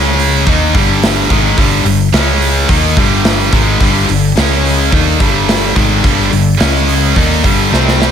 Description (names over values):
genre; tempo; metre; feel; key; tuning
hard rock; 108 BPM; 4/4; straight; unclear; A4 = 437 Hz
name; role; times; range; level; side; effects
biting overdriven guitar; riff; 0.0-8.1 s; G2 to Eb4; -15 LUFS; left 12 dB; none
heavy high-gain guitar; riff; 0.0-8.1 s; G2 to Eb4; -15 LUFS; right 13 dB; distortion
hollow-body short-scale fingered electric bass; bass; 0.0-8.1 s; G1 to Eb2; -15 LUFS; equal; none
big rock drum kit; drums; 0.2-8.1 s; hi-hat, kick drum, snare drum; -14 LUFS; equal; none
overdriven tonewheel organ; sustained chords; 3.8-8.1 s; G3 to Eb5; -25 LUFS; equal; none
room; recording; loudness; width
small room ambience; none; -9 LUFS; side -8 dB against mid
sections
0.0-8.1 A section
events
drum fill 7.7-8.1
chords
0.5 Gm; 2.1 C#5; 2.7 Gm; 4.4 C#5; 4.9 Gm; 6.6 C#5; 7.2 Gm